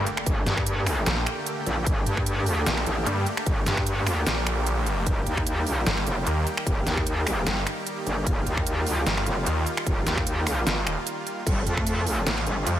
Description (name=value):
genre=heavy wobble dubstep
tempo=150 BPM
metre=4/4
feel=swing 54% on 16ths, half-time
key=unclear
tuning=A4 = 440 Hz
part: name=supersaw chords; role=sustained chords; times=0.0-12.8 s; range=C3 to G4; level=-31 LUFS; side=right 1 dB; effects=sidechain pumping
part: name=snarling distorted saw bass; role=bass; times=0.0-12.8 s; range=Eb1 to G2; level=-26 LUFS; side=equal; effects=distortion, overdrive
part: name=dubstep drum kit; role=drums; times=0.1-12.8 s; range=crash cymbal, finger snaps, hi-hat, snare drum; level=-29 LUFS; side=right 1 dB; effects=none
part: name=metallic wobble bass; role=bass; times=0.3-12.7 s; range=Eb1 to G2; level=-26 LUFS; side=equal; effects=distortion, chorus, overdrive
part: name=electronic kick drum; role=drums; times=0.3-11.8 s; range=none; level=-27 LUFS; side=equal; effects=none
part: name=warm cello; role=melody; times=11.5-12.8 s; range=G3 to Bb3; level=-33 LUFS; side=equal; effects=none
room=digital ambience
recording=none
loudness=-23 LUFS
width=side -12 dB against mid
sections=0.0-12.8 A section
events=break 11.1-11.5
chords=0.0 Gmadd9; 5.1 Eb; 11.5 F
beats=| 0.27 0.67 1.06 1.47 | 1.86 2.27 2.67 3.06 | 3.46 3.87 4.26 4.67 | 5.07 5.46 5.87 6.26 | 6.67 7.07 7.46 7.87 | 8.27 8.66 9.06 9.46 | 9.87 10.27 10.66 11.06 | 11.46 11.87 12.27 12.66